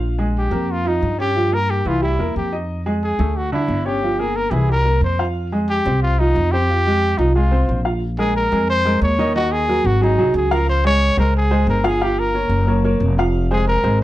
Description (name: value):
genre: Afro-Cuban jazz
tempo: 180 BPM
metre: 4/4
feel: straight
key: F minor, Bb minor from 8.0 s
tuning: A4 = 440 Hz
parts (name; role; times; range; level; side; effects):
- clear upright piano; accompaniment; 0.0-14.0 s; D3 to F5; -21 LUFS; right 1 dB; none
- upright bass; bass; 0.0-14.0 s; F1 to G2; -19 LUFS; equal; none
- warm trumpet; melody; 0.4-14.0 s; Eb4 to Db5; -20 LUFS; left 1 dB; none
room: light reverb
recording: dark, warm production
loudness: -16 LUFS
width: side -15 dB against mid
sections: 0.0-8.0 A section; 8.0-14.0 B section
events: none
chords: 0.0 Bbm7; 1.4 C7; 2.7 Fm7; 3.4 D5; 4.0 C7b13/G; 4.7 C5; 5.4 Fmadd9; 8.0 Bbm9; 9.3 Ebm; 10.0 Ab7; 10.7 Dbmaj7; 12.0 Gm7b5; 12.7 Gb; 13.3 Fm